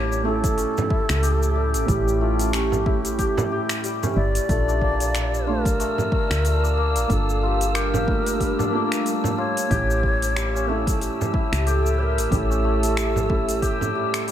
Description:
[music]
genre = organic downtempo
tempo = 92 BPM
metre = 4/4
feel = swing 57% on 16ths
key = A phrygian dominant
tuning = A4 = 440 Hz
[part]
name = bright bass bansuri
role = melody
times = 0.0-14.3 s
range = F4 to D5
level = -27 LUFS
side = equal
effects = tape echo
[part]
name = felt-muted upright piano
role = accompaniment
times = 0.0-14.3 s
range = E3 to A4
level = -30 LUFS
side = right 4 dB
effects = sidechain pumping, ping-pong delay
[part]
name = warbly tape-like pad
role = sustained chords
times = 0.0-14.3 s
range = A2 to G5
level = -30 LUFS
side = right 1 dB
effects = chorus, built-in reverb, sidechain pumping
[part]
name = santur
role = arpeggios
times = 0.0-14.3 s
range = G3 to G4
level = -28 LUFS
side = left 4 dB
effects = ping-pong delay
[part]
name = woody FM bass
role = bass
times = 0.0-13.7 s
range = G1 to D2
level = -24 LUFS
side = equal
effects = sidechain pumping
[part]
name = deep house drum kit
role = drums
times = 0.1-14.3 s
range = finger snaps, hi-hat, shaker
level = -30 LUFS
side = left 1 dB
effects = overdrive
[part]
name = electronic kick drum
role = drums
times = 0.4-13.8 s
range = none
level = -24 LUFS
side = equal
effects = overdrive
[part]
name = frame drum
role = percussion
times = 0.8-13.9 s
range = none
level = -27 LUFS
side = right 3 dB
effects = none
[part]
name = wind-like tuned noise texture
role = texture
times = 5.2-14.3 s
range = E6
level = -36 LUFS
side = right 4 dB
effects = built-in reverb
[sound]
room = light reverb, small room reverb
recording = none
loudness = -19 LUFS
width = side -10 dB against mid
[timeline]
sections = 0.0-14.3 A section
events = none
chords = 0.0 A7; 4.5 Bbmaj7; 7.1 Gm7; 9.7 A7

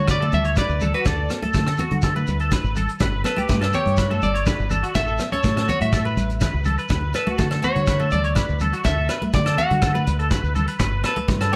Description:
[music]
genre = highlife guitar band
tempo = 123 BPM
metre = 4/4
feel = straight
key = D major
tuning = A4 = 440 Hz
[part]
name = clean electric guitar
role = melody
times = 0.0-11.6 s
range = A4 to F#5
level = -28 LUFS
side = equal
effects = slapback echo
[part]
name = electric guitar at the edge of break-up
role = arpeggios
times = 0.0-11.6 s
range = F#4 to D5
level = -29 LUFS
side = equal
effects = ensemble chorus, slapback echo
[part]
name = deep dub fingered electric bass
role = bass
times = 0.0-11.5 s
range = G1 to D3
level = -26 LUFS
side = equal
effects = none
[part]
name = soft brush drum kit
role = drums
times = 0.1-11.6 s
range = hi-hat, kick drum, rim click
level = -26 LUFS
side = equal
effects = none
[part]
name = shekere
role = percussion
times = 0.1-11.6 s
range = none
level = -35 LUFS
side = equal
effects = none
[part]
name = picked steel-string acoustic guitar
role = accompaniment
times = 0.2-11.6 s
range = A3 to D4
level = -32 LUFS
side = equal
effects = none
[part]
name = congas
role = percussion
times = 0.3-11.6 s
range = none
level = -31 LUFS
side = equal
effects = none
[sound]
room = light reverb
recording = none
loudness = -21 LUFS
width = mono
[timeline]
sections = 0.0-11.6 A section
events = none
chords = 0.0 D5; 3.0 Gsus2; 5.0 A; 6.9 D; 10.8 Gsus2

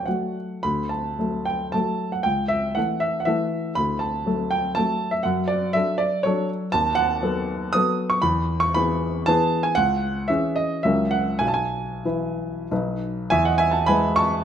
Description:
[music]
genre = classical, romantic triple-time dance for piano with dotted rhythms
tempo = 88-128 BPM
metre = 3/4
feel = rubato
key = D major, E major from 6.7 s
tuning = A4 = 440 Hz
[part]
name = warm baby grand piano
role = solo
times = 0.0-14.4 s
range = B1 to D#6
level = -20 LUFS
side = equal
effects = none
[sound]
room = moderate recital hall reverb, RT60 1.3 s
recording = close, detailed microphones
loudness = -20 LUFS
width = side -9 dB against mid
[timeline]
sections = 0.6-13.3 A section; 13.3-14.4 B section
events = none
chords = 0.0 D; 2.2 A/C#; 3.8 D; 5.2 D/F#; 6.7 B7/D#; 8.2 E; 9.8 C#m; 10.8 F#7/C#; 11.4 E/B; 12.7 B; 13.3 E

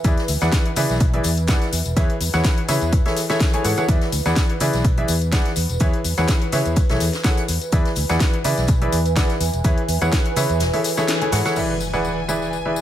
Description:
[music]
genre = piano house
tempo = 125 BPM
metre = 4/4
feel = swing 54% on 16ths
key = E mixolydian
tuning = A4 = 440 Hz
[part]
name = bright grand piano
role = riff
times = 0.0-12.8 s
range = E3 to G#5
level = -22 LUFS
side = equal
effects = sidechain pumping, ping-pong delay
[part]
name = fingered electric bass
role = bass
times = 0.0-11.4 s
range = E1 to C#3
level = -22 LUFS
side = equal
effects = sidechain pumping
[part]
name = electronic kick drum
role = drums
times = 0.0-10.2 s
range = none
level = -18 LUFS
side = equal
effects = overdrive
[part]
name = house drum kit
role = drums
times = 0.0-11.7 s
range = crash cymbal, hi-hat, snare drum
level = -27 LUFS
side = left 2 dB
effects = overdrive
[part]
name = soft-mallet drum kit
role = drums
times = 0.0-11.6 s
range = hi-hat, shaker, snare drum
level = -34 LUFS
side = equal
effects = high-pass filter on hats, high-pass filter on snare, high-pass filter on perc, high-pass filter on room
[part]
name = tambourine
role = percussion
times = 0.0-12.8 s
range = none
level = -33 LUFS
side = left 9 dB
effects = none
[part]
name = warbly tape-like pad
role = texture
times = 0.0-12.8 s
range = B4 to G#5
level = -29 LUFS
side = right 4 dB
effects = chorus, built-in reverb, sidechain pumping
[part]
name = rich studio violin section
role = sustained chords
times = 11.6-12.8 s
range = G#5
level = -32 LUFS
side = left 2 dB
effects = sidechain pumping
[part]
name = impact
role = sound effects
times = 11.6-12.8 s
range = none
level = -30 LUFS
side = equal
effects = none
[sound]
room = studio reverb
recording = faint mains hum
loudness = -17 LUFS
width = side -11 dB against mid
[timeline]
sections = 0.0-11.6 A section; 11.6-12.8 B section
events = kick drops out 10.6-11.6; band accent 11.1; impact 11.6-12.8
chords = 0.0 E7; 1.7 C#m7/E; 2.9 Amaj7/E; 3.9 E7; 5.6 C#m7/E; 6.8 Amaj7; 7.7 E7; 9.4 C#m7/E; 10.6 Amaj7/E; 11.6 E7

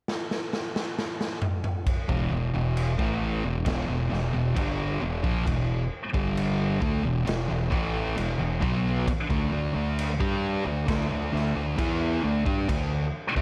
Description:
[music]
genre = stoner and doom metal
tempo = 67 BPM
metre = 4/4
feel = straight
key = E minor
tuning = A4 = 440 Hz
[part]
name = raw garage drum kit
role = drums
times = 0.1-13.4 s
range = crash cymbal, kick drum, snare drum, toms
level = -33 LUFS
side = equal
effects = none
[part]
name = thick fuzz guitar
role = riff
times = 2.1-13.4 s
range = E2 to G4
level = -33 LUFS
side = equal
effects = distortion
[part]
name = thick fuzz guitar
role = riff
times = 2.1-13.4 s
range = E2 to G4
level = -31 LUFS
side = equal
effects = distortion
[part]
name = growling fingered electric bass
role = bass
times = 2.1-13.4 s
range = E1 to G2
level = -34 LUFS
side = equal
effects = overdrive
[sound]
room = studio ambience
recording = none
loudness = -27 LUFS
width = mono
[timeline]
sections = 0.0-1.9 A section; 1.9-13.4 B section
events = drum fill 0.1-1.9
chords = 0.0 N.C.; 1.9 Em; 9.3 D5

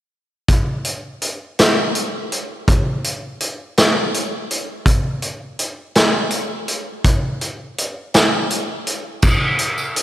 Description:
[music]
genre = rock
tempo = 55 BPM (dotted quarters)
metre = 6/8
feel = straight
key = none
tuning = none
[part]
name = vintage drum kit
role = drums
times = 0.5-10.0 s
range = crash cymbal, hi-hat, kick drum, snare drum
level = -16 LUFS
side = equal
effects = none
[part]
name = tambourine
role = percussion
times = 9.2-9.9 s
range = none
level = -31 LUFS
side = right 4 dB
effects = none
[sound]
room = moderate lush hall reverb, RT60 2.8 s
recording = dreamy mix soaked in reverb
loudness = -17 LUFS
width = side -13 dB against mid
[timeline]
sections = 0.5-9.2 A section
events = none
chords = none

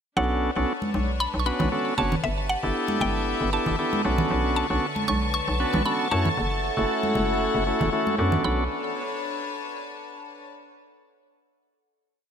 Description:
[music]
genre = deep house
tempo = 116 BPM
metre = 4/4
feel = swing 53% on 16ths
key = B minor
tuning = A4 = 438 Hz
[part]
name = mallet-like synth pluck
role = melody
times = 0.2-8.7 s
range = E5 to C#6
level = -30 LUFS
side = equal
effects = chorus, digital delay
[part]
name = bright tonewheel organ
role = stabs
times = 0.2-8.6 s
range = A3 to C#5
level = -26 LUFS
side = equal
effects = digital delay
[part]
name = hollow knocking FM bass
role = bass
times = 0.2-8.7 s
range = F#1 to F#2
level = -27 LUFS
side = equal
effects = none
[part]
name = rich studio string section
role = texture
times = 0.2-10.5 s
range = D3 to C#6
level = -32 LUFS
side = left 3 dB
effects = none
[part]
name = congas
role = percussion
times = 0.8-8.4 s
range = none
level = -30 LUFS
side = right 2 dB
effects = none
[part]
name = warbly tape-like pad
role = sustained chords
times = 4.9-8.7 s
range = A4 to F#5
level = -34 LUFS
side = equal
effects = chorus, built-in reverb
[part]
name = analog string pad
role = texture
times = 4.3-8.5 s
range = A5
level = -34 LUFS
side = right 1 dB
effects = ensemble chorus
[sound]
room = moderate lush hall reverb, RT60 1.9 s, digital ambience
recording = bright 1980s-style digital production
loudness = -22 LUFS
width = side -8 dB against mid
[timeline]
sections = 0.2-8.4 drop; 8.4-10.5 final chord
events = drop 0.2-8.4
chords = 0.2 Bm9; 2.2 G69; 4.0 Bm9; 6.1 F#m7; 8.4 Bm9

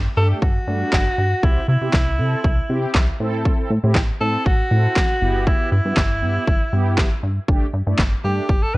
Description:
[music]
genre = dance-pop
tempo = 119 BPM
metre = 4/4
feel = straight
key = G major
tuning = A4 = 441 Hz
[part]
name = plucky analog bass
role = bass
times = 0.0-8.8 s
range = G1 to C3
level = -20 LUFS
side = equal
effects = sidechain pumping
[part]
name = bright alto saxophone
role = melody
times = 0.2-8.8 s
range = E4 to B4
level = -23 LUFS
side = equal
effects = tape echo
[part]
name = mellow synth brass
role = accompaniment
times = 0.2-8.8 s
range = G3 to A4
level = -27 LUFS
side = right 1 dB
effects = chorus
[part]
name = pop drum kit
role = drums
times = 0.4-8.6 s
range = handclaps, kick drum, snare drum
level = -19 LUFS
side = equal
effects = overdrive
[sound]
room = light reverb, digital ambience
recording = worn, warbling old tape, cassette tape, warbly pitch drift, nothing above 10.6 kHz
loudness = -16 LUFS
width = side -20 dB against mid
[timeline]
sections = 0.0-8.8 A section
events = none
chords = 0.0 Gsus2; 1.4 C; 3.2 Am; 5.2 Em/G; 7.5 Gsus2

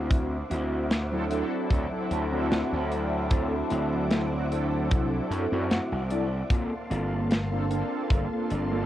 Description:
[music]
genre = vaporwave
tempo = 75 BPM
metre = 4/4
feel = swing 54% on 16ths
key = unclear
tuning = A4 = 440 Hz
[part]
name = soft string machine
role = sustained chords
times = 0.0-8.9 s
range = Bb3 to D6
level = -36 LUFS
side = equal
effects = ensemble chorus
[part]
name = mellow electric guitar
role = riff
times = 0.0-8.9 s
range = Bb3 to F#5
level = -34 LUFS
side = left 1 dB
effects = analog chorus, tape echo
[part]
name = gritty slap bass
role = bass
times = 0.0-8.9 s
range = G1 to F#2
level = -30 LUFS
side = equal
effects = overdrive, tube saturation
[part]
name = kick drum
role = drums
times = 0.1-8.3 s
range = none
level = -25 LUFS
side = equal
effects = none
[part]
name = tight metal drum kit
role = drums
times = 0.1-8.7 s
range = hi-hat, snare drum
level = -30 LUFS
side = equal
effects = none
[part]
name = mellow synth brass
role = accompaniment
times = 1.1-8.9 s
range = F#3 to A4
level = -30 LUFS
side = equal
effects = phaser, wide subtle chorus, tape echo
[sound]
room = light reverb, small room ambience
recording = worn, warbling old tape, cassette tape, warbly pitch drift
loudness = -25 LUFS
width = side -13 dB against mid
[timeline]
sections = 0.0-8.9 A section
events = clean electric guitar fill 5.3-6.5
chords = 0.0 D9; 6.5 Gm11

